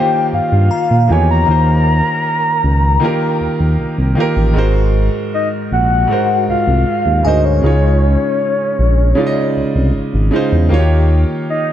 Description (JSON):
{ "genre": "R&B", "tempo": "78 BPM", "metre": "4/4", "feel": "straight", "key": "unclear", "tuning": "A4 = 441 Hz", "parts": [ { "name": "soft octave-layered synth lead", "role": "melody", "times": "0.0-11.7 s", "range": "Db5 to Bb5", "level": "-17 LUFS", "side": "left 1 dB", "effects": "chorus, phaser, ping-pong delay" }, { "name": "clear concert grand piano", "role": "accompaniment", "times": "0.0-11.7 s", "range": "Ab2 to Eb5", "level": "-17 LUFS", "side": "right 1 dB", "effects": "none" }, { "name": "smooth synth bass", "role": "bass", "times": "0.3-11.2 s", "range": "Ab1 to Bb2", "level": "-13 LUFS", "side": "equal", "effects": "none" }, { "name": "glassy synth bell", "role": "texture", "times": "0.7-2.6, 7.2-8.0 s", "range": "Ab5 to Bb5", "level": "-30 LUFS", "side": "left 6 dB", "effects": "chorus, ping-pong delay" } ], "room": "digital ambience", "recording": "dark, warm production", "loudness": "-12 LUFS", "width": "side -11 dB against mid", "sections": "0.0-11.7 A section", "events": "none", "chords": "0.0 Eb7; 4.6 Ab7; 7.6 Dbmaj7; 10.7 Eb7" }